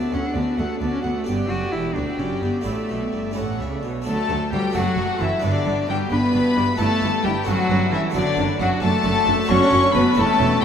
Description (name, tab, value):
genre	classical, baroque-style concerto movement with solo episodes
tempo	88 BPM (dotted quarters)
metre	6/8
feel	straight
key	D major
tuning	A4 = 439 Hz
part	dark cello	melody	0.0-10.6 s	D3 to F#4	-23 LUFS	left 1 dB	none
part	rich chamber violin section	melody	0.0-10.6 s	C#5 to C#6	-25 LUFS	left 4 dB	none
part	rich chamber violin section	second line	0.0-10.6 s	D4 to F#5	-26 LUFS	left 2 dB	none
part	dark chamber viola section	accompaniment	0.0-10.6 s	F#3 to A4	-30 LUFS	right 1 dB	none
part	harpsichord	accompaniment	0.0-10.6 s	D2 to G4	-31 LUFS	equal	none
part	rich chamber cello section	bass	0.1-10.6 s	D2 to C#3	-29 LUFS	right 4 dB	none
part	rich chamber double bass section	bass	0.1-10.6 s	E1 to D2	-28 LUFS	right 4 dB	none
room	wet cathedral reverb, RT60 7.4 s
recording	in a vast, echoing space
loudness	-18 LUFS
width	side -8 dB against mid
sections	0.0-4.1 A section; 4.1-10.6 B section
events	none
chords	0.0 D; 1.3 G5; 2.7 Asus4; 3.4 A; 4.1 D; 4.7 F#m; 5.4 G; 6.8 Em/G; 7.5 A7/G; 8.1 D/F#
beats	0.59 | 1.26 1.95 | 2.65 3.36 | 4.07 4.75 | 5.43 6.11 | 6.79 7.46 | 8.14 8.82 | 9.49 10.17